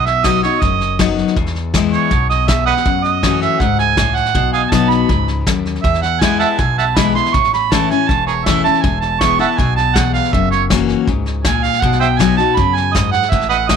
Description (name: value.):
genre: honky-tonk and classic country.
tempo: 161 BPM.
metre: 4/4.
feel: straight.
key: E major.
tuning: A4 = 440 Hz.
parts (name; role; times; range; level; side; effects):
mellow harmonica; second line; 0.0-13.8 s; G#4 to C#6; -16 LUFS; right 10 dB; none.
picked steel-string acoustic guitar; accompaniment; 0.0-13.8 s; E2 to F#4; -18 LUFS; left 10 dB; none.
upright bass; bass; 0.0-13.8 s; E1 to F#2; -21 LUFS; equal; none.
soft brush drum kit; drums; 0.1-13.8 s; hi-hat, kick drum, snare drum; -19 LUFS; equal; none.
room: moderate spring reverb, RT60 1.9 s, studio ambience.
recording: 1960s-style stereo with parts hard left and right.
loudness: -12 LUFS.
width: side -7 dB against mid.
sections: 0.0-13.8 A section.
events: harmonica solo 0.0-13.8.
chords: 0.0 B; 1.4 E; 2.9 F#m7; 4.4 B; 5.8 E; 7.3 A; 8.8 E; 10.3 F#7; 11.8 B.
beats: 0.24 0.62 0.99 | 1.37 1.74 2.11 2.49 | 2.86 3.23 3.61 3.98 | 4.36 4.73 5.10 5.48 | 5.85 6.22 6.60 6.97 | 7.34 7.72 8.09 8.47 | 8.84 9.21 9.59 9.96 | 10.33 10.71 11.08 11.46 | 11.83 12.20 12.57 12.95 | 13.32 13.70.